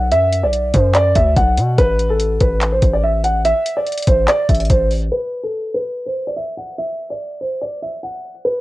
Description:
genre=hip hop, trap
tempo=144 BPM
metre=4/4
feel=half-time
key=B phrygian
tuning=A4 = 440 Hz
part: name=dark concert grand piano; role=melody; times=0.0-8.6 s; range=A4 to F#5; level=-18 LUFS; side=right 1 dB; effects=cassette tape, analog delay
part: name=distorted 808-style bass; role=bass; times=0.0-5.1 s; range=A1 to B2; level=-17 LUFS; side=equal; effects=distortion
part: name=trap drum kit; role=drums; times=0.1-8.6 s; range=handclaps, hi-hat, kick drum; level=-18 LUFS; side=equal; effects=vintage 12-bit sampler grit, cassette tape
room=light reverb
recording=home recording on cassette, low-pass filter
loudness=-14 LUFS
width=side -17 dB against mid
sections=0.0-5.1 A section; 5.1-8.6 B section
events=filter sweep 5.1-8.6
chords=0.0 Bm; 1.8 N.C.

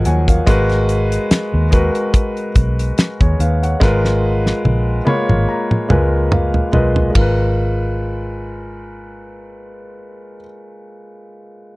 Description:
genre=lush 1970s-style soul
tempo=72 BPM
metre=4/4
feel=swing 54% on 16ths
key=G# dorian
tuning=A4 = 441 Hz
part: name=warm concert grand piano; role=accompaniment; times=0.0-11.8 s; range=E#3 to B5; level=-20 LUFS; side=left 1 dB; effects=none
part: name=vintage muted fingered electric bass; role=bass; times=0.0-10.4 s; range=G#1 to D#2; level=-17 LUFS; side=equal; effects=none
part: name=damped 70s drum kit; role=drums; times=0.1-7.4 s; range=hi-hat, kick drum, ride cymbal, snare drum, toms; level=-16 LUFS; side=equal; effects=none
room=little or no reverb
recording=dry, close 1970s-style studio recording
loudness=-13 LUFS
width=side -22 dB against mid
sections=0.0-7.2 A section; 7.2-10.5 B section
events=grand piano fill 0.0-0.5, 4.6-7.2; drum fill 3.8-7.2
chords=0.5 G#m9; 7.2 G#m69

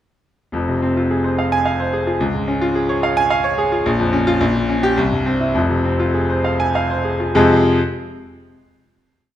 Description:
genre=classical, virtuoso piano study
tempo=99-110 BPM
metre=3/4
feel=rubato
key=F minor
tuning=A4 = 440 Hz
part: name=clear grand piano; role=solo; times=0.5-7.8 s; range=F1 to Ab5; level=-15 LUFS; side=equal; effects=none
room=wet recital hall reverb, RT60 1.5 s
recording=none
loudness=-15 LUFS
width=side -11 dB against mid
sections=0.5-7.3 A section; 7.3-9.1 final chord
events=slowing down 3.0-7.3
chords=0.5 Fm; 2.2 Db; 3.9 Bbm; 4.4 Gdim/Bb; 5.0 C; 5.6 Fm

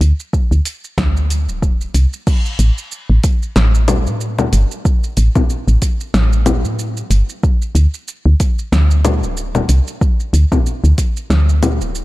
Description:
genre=organic downtempo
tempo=93 BPM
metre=4/4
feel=swing 56% on 16ths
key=unclear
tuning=A4 = 440 Hz
part: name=woody FM bass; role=bass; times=0.0-12.0 s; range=D1 to A2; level=-13 LUFS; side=equal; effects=sidechain pumping
part: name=deep house drum kit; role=drums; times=0.0-12.0 s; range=congas, crash cymbal, hi-hat, shaker, snare drum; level=-20 LUFS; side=left 2 dB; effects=overdrive
part: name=electronic kick drum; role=drums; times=0.3-11.1 s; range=none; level=-15 LUFS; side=equal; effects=overdrive
room=little or no reverb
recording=dark, warm production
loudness=-13 LUFS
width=side -18 dB against mid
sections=0.0-2.3 A section; 2.3-12.0 B section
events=none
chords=none

